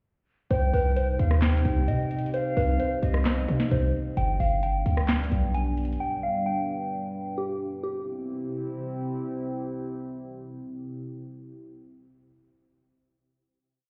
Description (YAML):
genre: hip hop, trap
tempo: 131 BPM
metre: 4/4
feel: half-time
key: C harmonic minor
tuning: A4 = 435 Hz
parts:
  - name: soft synth bell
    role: melody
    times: 0.5-9.2 s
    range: G4 to Ab5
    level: -33 LUFS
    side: equal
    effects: chorus
  - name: reedy concert flute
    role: second line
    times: 0.5-3.7 s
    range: Eb5 to G5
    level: -38 LUFS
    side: equal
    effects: digital delay
  - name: dark analog pad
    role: sustained chords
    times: 0.5-11.7 s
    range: C3 to G4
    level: -35 LUFS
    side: equal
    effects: chorus, phaser
  - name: hard-hitting 808-style bass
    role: bass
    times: 0.5-6.0 s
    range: G1 to C3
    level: -27 LUFS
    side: equal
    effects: none
  - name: booming analog drum machine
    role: drums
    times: 0.5-6.0 s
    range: handclaps, hi-hat, rim click, snare drum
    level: -32 LUFS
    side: equal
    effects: none
room: little or no reverb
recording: heard muffled through a wall, stone room reverb, EQ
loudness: -27 LUFS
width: mono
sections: 0.5-7.8 hook; 7.8-11.5 final chord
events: none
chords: 0.5 Cm; 4.2 G; 7.8 C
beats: | 0.51 0.96 1.42 1.88 | 2.34 2.80 3.25 3.71 | 4.17 4.63 5.09 5.54 | 6.00 6.46 6.92 7.38 | 7.83 8.29 8.75 9.21 | 9.67 10.12 10.58 11.04